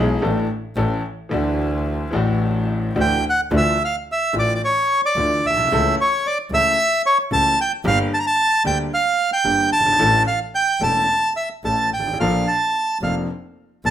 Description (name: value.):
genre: tango.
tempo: 110 BPM.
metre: 4/4.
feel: rubato.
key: D major, D harmonic minor from 3.5 s.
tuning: A4 = 442 Hz.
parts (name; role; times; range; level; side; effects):
warm grand piano; accompaniment; 0.0-13.9 s; E1 to A4; -22 LUFS; left 1 dB; plate reverb.
clear double bass; bass; 0.0-13.9 s; E1 to D2; -25 LUFS; equal; none.
bandoneon; melody; 3.0-13.9 s; C#5 to Bb5; -17 LUFS; right 1 dB; plate reverb.
room: wet studio reverb, RT60 0.6 s.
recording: rough home demo mix.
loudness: -17 LUFS.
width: side -10 dB against mid.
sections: 0.0-3.5 A section; 3.5-13.9 B section.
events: none.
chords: 0.2 Asus4; 0.8 A; 1.3 Dadd9; 3.5 Dmadd9; 5.7 A/C#; 7.8 Gm; 10.0 A; 12.2 Bbmaj7.